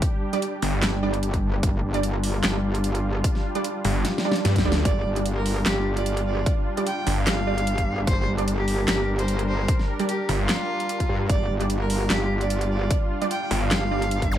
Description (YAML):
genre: heavy wobble dubstep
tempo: 149 BPM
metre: 4/4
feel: swing 54% on 16ths, half-time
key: G minor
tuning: A4 = 439 Hz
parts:
  - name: supersaw pad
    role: sustained chords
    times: 0.0-14.4 s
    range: G3 to Bb4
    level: -31 LUFS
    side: right 1 dB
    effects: sidechain pumping, low-pass filter
  - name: dubstep drum kit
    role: drums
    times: 0.0-14.3 s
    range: handclaps, hi-hat, snare drum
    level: -28 LUFS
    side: equal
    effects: small room ambience
  - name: electronic kick drum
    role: drums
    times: 0.0-14.3 s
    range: none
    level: -24 LUFS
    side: equal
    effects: small room ambience
  - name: orchestra-hit-like synth stab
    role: stabs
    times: 0.3-14.0 s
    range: G3 to D5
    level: -30 LUFS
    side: right 4 dB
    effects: built-in reverb, digital delay
  - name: snarling distorted saw bass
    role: bass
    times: 0.6-0.8, 3.8-7.3, 10.3-10.5, 13.5-13.7 s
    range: G1 to G2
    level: -23 LUFS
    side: equal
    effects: distortion, overdrive
  - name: metallic wobble bass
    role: bass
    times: 0.8-14.4 s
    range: G1 to G2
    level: -25 LUFS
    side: equal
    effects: distortion, chorus, overdrive
  - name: swell and zap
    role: sound effects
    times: 4.3-4.9, 14.3-14.4 s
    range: none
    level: -33 LUFS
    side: right 4 dB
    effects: none
  - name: clear cello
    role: melody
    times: 4.9-14.4 s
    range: F4 to G5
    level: -29 LUFS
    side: right 2 dB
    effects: vintage 12-bit sampler grit, digital delay
room: digital ambience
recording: none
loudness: -21 LUFS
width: side -11 dB against mid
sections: 0.0-14.4 A section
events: drum fill 4.0-4.9; swell 4.3-4.9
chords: 0.0 G5